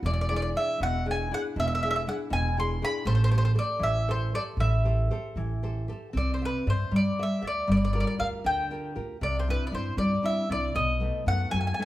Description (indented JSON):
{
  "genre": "italian folk, Italian serenade",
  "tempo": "78 BPM (dotted quarters)",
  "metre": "6/8",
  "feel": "straight",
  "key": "C major from 6.2 s",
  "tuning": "A4 = 440 Hz",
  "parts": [
    { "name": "nylon-string guitar", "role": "accompaniment", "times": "0.0-11.8 s", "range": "B2 to E5", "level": "-31 LUFS", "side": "left 1 dB", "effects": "none" },
    { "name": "upright bass", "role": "bass", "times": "0.0-11.7 s", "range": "E1 to G2", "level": "-28 LUFS", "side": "equal", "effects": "none" },
    { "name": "mandolin", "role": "melody", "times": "0.1-11.8 s", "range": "B4 to C6", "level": "-29 LUFS", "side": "equal", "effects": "none" }
  ],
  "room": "moderate large studio reverb, RT60 1.2 s",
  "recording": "band playing live in one room",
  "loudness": "-25 LUFS",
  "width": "side -15 dB against mid",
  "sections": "0.0-6.2 A section; 6.2-11.8 B section",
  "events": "none",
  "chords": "0.0 E7; 3.1 Am7; 6.2 Cadd9; 7.7 Gm7; 9.2 Cadd9; 10.8 B7"
}